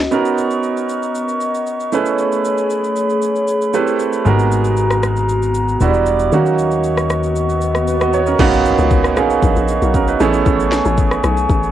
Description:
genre	amapiano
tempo	116 BPM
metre	4/4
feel	straight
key	B major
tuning	A4 = 445 Hz
part	glass harmonica	sustained chords	0.0-11.7 s	G3 to D6	-20 LUFS	left 2 dB	sidechain pumping, cassette tape
part	hollow log drum bass	bass	0.0-0.1, 8.4-11.7 s	A1 to C#2	-19 LUFS	left 2 dB	none
part	clear grand piano	accompaniment	0.1-11.7 s	F#3 to D#5	-17 LUFS	right 6 dB	cassette tape, plate reverb
part	afro-pop drum kit	drums	0.1-11.7 s	crash cymbal, kick drum, rim click, shaker, snare drum	-20 LUFS	left 2 dB	vintage 12-bit sampler grit, cassette tape
part	plucky analog bass	bass	4.3-8.4 s	E1 to D#2	-18 LUFS	left 2 dB	none
part	swell and impact	sound effects	7.2-10.5 s	none	-26 LUFS	left 1 dB	none
room	moderate booth ambience, RT60 0.2 s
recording	home recording on cassette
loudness	-13 LUFS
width	side -11 dB against mid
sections	0.1-8.4 A section; 8.4-11.7 B section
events	swell 7.2-8.4; kick muted 7.4-8.4; impact 8.4-10.5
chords	0.1 Bmaj9; 1.9 Amaj9; 3.7 Am9; 4.3 G#m9; 5.8 Em7; 6.3 D#m7; 8.4 Bmaj9; 10.2 Amaj9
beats	| 0.12 0.63 1.15 1.67 | 2.19 2.70 3.22 3.74 | 4.25 4.77 5.29 5.81 | 6.32 6.84 7.36 7.88 | 8.39 8.91 9.43 9.94 | 10.46 10.98 11.49

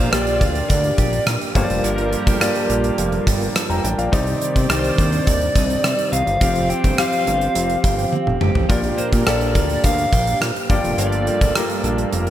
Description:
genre	1980s-style pop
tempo	105 BPM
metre	4/4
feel	straight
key	G minor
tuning	A4 = 440 Hz
part	lead guitar through a small cranked amp	melody	0.0-11.5 s	Bb4 to G5	-23 LUFS	left 1 dB	overdrive
part	clear grand piano	accompaniment	0.0-12.3 s	G2 to Bb5	-24 LUFS	left 3 dB	none
part	brassy analog pad	sustained chords	0.0-12.3 s	Eb3 to D5	-28 LUFS	right 1 dB	chorus
part	direct-recorded clean electric guitar	riff	0.0-12.3 s	F3 to G4	-29 LUFS	right 6 dB	wide subtle chorus, digital delay
part	mellow horn section	stabs	0.0-12.3 s	D3 to D5	-30 LUFS	right 6 dB	none
part	fat analog bass	bass	0.0-12.3 s	F1 to C3	-23 LUFS	equal	none
part	gated 80s drum kit	drums	0.1-12.3 s	hi-hat, kick drum, rim click, toms	-20 LUFS	equal	none
room	light reverb, small room ambience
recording	none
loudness	-16 LUFS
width	side -12 dB against mid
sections	0.0-12.3 A section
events	drum fill 8.1-8.7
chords	0.0 Bb6; 1.6 Gm7; 4.1 Cmadd9; 6.4 Fsus2; 8.7 Bb6; 10.7 Gm7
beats	0.13 0.70 1.27 | 1.84 2.41 2.98 3.56 | 4.13 4.70 5.27 5.84 | 6.41 6.98 7.56 8.13 | 8.70 9.27 9.84 10.41 | 10.98 11.56 12.13

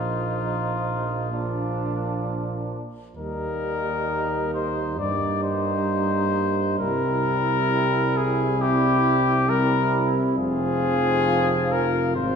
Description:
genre	classical, brass quintet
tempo	66 BPM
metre	4/4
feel	straight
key	Eb major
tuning	A4 = 440 Hz
part	warm trumpet	melody	0.0-12.4 s	F4 to D5	-25 LUFS	left 6 dB	none
part	warm flugelhorn	second line	0.0-12.4 s	D4 to F4	-29 LUFS	right 5 dB	none
part	clear euphonium	accompaniment	0.0-12.4 s	F3 to G3	-30 LUFS	right 4 dB	none
part	warm French horn	accompaniment	0.0-12.4 s	Bb3 to C4	-29 LUFS	left 2 dB	none
part	warm tuba	bass	0.0-12.4 s	F1 to G2	-28 LUFS	right 3 dB	none
room	wet recital hall reverb, RT60 1.5 s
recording	heard from further back in the room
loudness	-21 LUFS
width	side -6 dB against mid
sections	0.0-12.4 A section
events	none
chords	0.0 Bbsus4; 3.2 Eb; 5.0 Eb/G; 6.8 C7; 10.4 Fm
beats	0.40 1.32 2.24 | 3.16 4.08 4.99 5.89 | 6.80 7.71 8.61 9.50 | 10.38 11.27 12.16

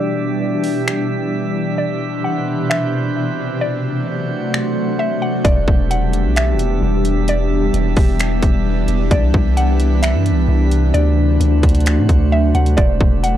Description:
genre	hip hop, atmospheric cloud-rap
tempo	131 BPM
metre	4/4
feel	half-time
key	E minor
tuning	A4 = 440 Hz
part	mallet-like synth pluck	melody	0.0-13.4 s	D5 to F#5	-24 LUFS	equal	chorus, low-pass filter, analog delay
part	shimmering ambient pad	sustained chords	0.0-13.4 s	B2 to G4	-19 LUFS	equal	chorus, built-in reverb, sidechain pumping, low-pass filter
part	drifting glass-harmonics texture	texture	0.0-13.4 s	D4 to F#5	-27 LUFS	right 4 dB	chorus, built-in reverb
part	trap drum kit	drums	0.6-13.3 s	finger snaps, hi-hat, kick drum	-17 LUFS	equal	none
part	long sustained 808-style bass	bass	5.4-13.4 s	E1 to A2	-16 LUFS	equal	none
room	little or no reverb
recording	dry, gritty hardware recording, transformer saturation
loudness	-14 LUFS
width	side -11 dB against mid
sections	0.0-5.4 A section; 5.4-13.4 B section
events	filter sweep 0.0-5.4; kick muted 3.6-5.4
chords	0.0 Em7; 1.8 Cmaj9; 3.6 D7; 5.4 Em7; 9.1 Cmaj9; 10.9 D7; 12.8 Em7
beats	0.41 0.87 1.32 | 1.78 2.24 2.70 3.16 | 3.62 4.07 4.53 4.99 | 5.45 5.91 6.36 6.82 | 7.28 7.74 8.20 8.65 | 9.11 9.57 10.03 10.48 | 10.94 11.40 11.86 12.32 | 12.78 13.23

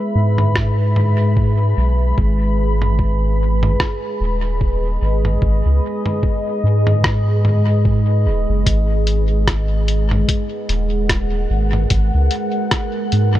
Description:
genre	ambient dub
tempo	74 BPM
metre	4/4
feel	swing 57% on 16ths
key	G# minor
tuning	A4 = 440 Hz
part	deep dark ambient pad	sustained chords	0.0-13.4 s	G#3 to B5	-22 LUFS	equal	chorus, built-in reverb
part	soft dub sub bass	bass	0.2-13.4 s	D#1 to G#2	-16 LUFS	equal	none
part	lo-fi sampler-style drum kit	drums	0.4-13.4 s	hi-hat, rim click, toms	-23 LUFS	equal	dub echo
part	electronic kick drum	drums	0.6-12.9 s	none	-19 LUFS	equal	none
room	little or no reverb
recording	none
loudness	-15 LUFS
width	side -14 dB against mid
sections	0.0-8.7 A section; 8.7-13.4 B section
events	none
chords	0.0 E; 8.7 G#m7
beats	0.56 1.37 | 2.18 2.99 3.80 4.61 | 5.42 6.23 7.04 7.85 | 8.66 9.47 10.29 11.10 | 11.91 12.72

